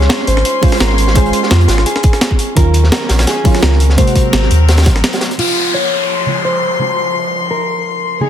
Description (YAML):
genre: liquid drum and bass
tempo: 170 BPM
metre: 4/4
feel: swing 54% on 16ths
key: Db major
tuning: A4 = 439 Hz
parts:
  - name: mellow electric guitar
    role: melody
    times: 0.0-8.3 s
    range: F4 to Db5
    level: -19 LUFS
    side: left 1 dB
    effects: digital delay
  - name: deep mellow chord stab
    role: accompaniment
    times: 0.0-8.3 s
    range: C3 to C5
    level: -20 LUFS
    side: right 3 dB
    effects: chorus, dub echo
  - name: rich chamber string section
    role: sustained chords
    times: 0.0-8.3 s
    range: F3 to C6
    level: -21 LUFS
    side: left 3 dB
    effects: sidechain pumping
  - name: warm sub bass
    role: bass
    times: 0.0-5.0 s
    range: Ab1 to F2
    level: -11 LUFS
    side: equal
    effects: none
  - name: crunchy breakbeat drum kit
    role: drums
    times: 0.0-5.4 s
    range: hi-hat, snare drum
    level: -21 LUFS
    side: equal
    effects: high-pass filter on hats, high-pass filter on snare, high-pass filter on room
  - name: breakbeat sampler-style drum kit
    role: drums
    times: 0.1-5.5 s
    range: crash cymbal, hi-hat, snare drum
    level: -18 LUFS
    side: equal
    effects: none
  - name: electronic kick drum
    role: drums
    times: 0.6-4.9 s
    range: none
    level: -11 LUFS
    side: equal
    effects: none
  - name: downlifter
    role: sound effects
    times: 5.4-8.2 s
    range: none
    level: -19 LUFS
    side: left 2 dB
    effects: none
room: light reverb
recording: dense, heavily limited modern master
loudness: -10 LUFS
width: side -10 dB against mid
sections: 0.0-5.4 A section; 5.4-8.3 B section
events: drop 0.0-5.4; break 5.0-5.4; band accent 5.0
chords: 0.0 Dbmaj7; 2.6 Ebm9; 4.0 Ab9; 5.4 Dbmaj7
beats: 0.10 0.45 0.80 | 1.16 1.51 1.86 2.21 | 2.57 2.92 3.27 3.63 | 3.98 4.33 4.68 5.04 | 5.39 5.74 6.10 6.45 | 6.80 7.16 7.51 7.86 | 8.21